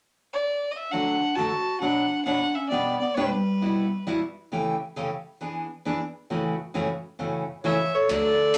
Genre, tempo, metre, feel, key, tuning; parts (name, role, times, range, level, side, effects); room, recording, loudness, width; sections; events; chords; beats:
country, western swing; 134 BPM; 4/4; swing 68% on 8ths; A4 = 438 Hz
clear fiddle; melody; 0.3-4.1, 7.6-8.6 s; B4 to A5; -29 LUFS; equal
breathy clarinet; second line; 0.9-4.1, 7.6-8.6 s; G3 to C#5; -28 LUFS; equal
picked steel-string acoustic guitar; accompaniment; 0.9-8.6 s; A2 to C#5; -31 LUFS; equal
upright bass; bass; 8.1-8.6 s; D2; -37 LUFS; equal
swinging big-band drum kit; drums; 8.1-8.6 s; hi-hat, ride cymbal; -36 LUFS; equal
wet studio reverb, RT60 0.5 s; -27 LUFS; mono
0.9-8.1 A section
0.0 N.C.; 0.9 D; 1.8 Bmadd9; 2.7 G/B; 3.6 Emadd9/B; 4.5 A7/C#; 5.4 E7; 6.3 A6
0.03 0.48 | 0.93 1.38 1.82 2.27 | 2.72 3.17 3.62 4.07 | 4.51 4.96 5.41 5.86 | 6.31 6.75 7.20 7.65 | 8.10 8.55